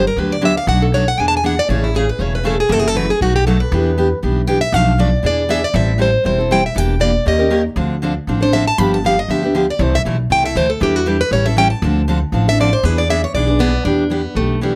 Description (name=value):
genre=acoustic string swing (jazz manouche)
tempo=237 BPM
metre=4/4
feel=swing 55% on 8ths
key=A minor from 5.7 s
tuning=A4 = 440 Hz
part: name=picked plugged-in steel-string acoustic guitar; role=melody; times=0.0-14.8 s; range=G3 to B5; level=-20 LUFS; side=equal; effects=none
part: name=upright bass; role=bass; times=0.0-14.8 s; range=E1 to E2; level=-20 LUFS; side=equal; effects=none
part: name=picked steel-string acoustic guitar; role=accompaniment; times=0.2-14.7 s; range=B2 to B4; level=-21 LUFS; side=equal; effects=none
room=light reverb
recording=none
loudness=-16 LUFS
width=mono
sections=0.0-5.7 A section; 5.7-13.8 A section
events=steel-string acoustic guitar solo 0.0-13.8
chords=0.0 Gmaj7; 0.7 Bm7; 1.2 E7; 1.7 Amaj7; 2.7 F#m7b5; 3.2 B7; 3.7 Em7; 4.7 Bm7b5; 5.2 E7; 5.7 Am7; 6.8 Em7b5; 7.3 D#7; 7.8 Dm7; 8.8 G7; 9.8 C6; 10.8 Em7; 11.3 A7; 11.8 Dm7; 12.8 E7; 13.8 Em7